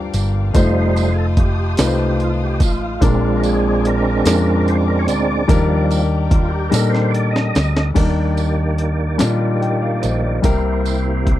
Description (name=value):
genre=slow gospel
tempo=48 BPM (dotted quarters)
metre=6/8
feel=straight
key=Eb major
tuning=A4 = 438 Hz
part: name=warm grand piano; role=accompaniment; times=0.0-11.4 s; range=G2 to G5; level=-20 LUFS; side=left 3 dB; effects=none
part: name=warm studio string section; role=sustained chords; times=0.0-7.9 s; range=Bb4 to Eb6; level=-32 LUFS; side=left 4 dB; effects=none
part: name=hollow-body short-scale fingered electric bass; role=bass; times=0.0-11.4 s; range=F1 to Bb2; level=-19 LUFS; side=equal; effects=none
part: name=jungle sampler-style drum kit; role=drums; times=0.1-11.4 s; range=crash cymbal, hi-hat, kick drum, snare drum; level=-18 LUFS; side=equal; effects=overdrive
part: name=tambourine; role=percussion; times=0.1-11.2 s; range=none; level=-31 LUFS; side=right 16 dB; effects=none
part: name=tonewheel organ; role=sustained chords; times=0.5-11.4 s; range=Eb3 to Eb5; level=-22 LUFS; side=right 4 dB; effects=slow rotary speaker, overdrive, chorus vibrato
room=little or no reverb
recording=dry, close 1970s-style studio recording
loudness=-14 LUFS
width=side -13 dB against mid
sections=0.0-8.0 A section; 8.0-11.4 B section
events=tonewheel organ solo 0.0-8.0; drum fill 6.7-8.0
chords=0.0 Gm7; 0.5 F7; 3.0 Bb7; 5.5 Ebmaj7; 10.4 C7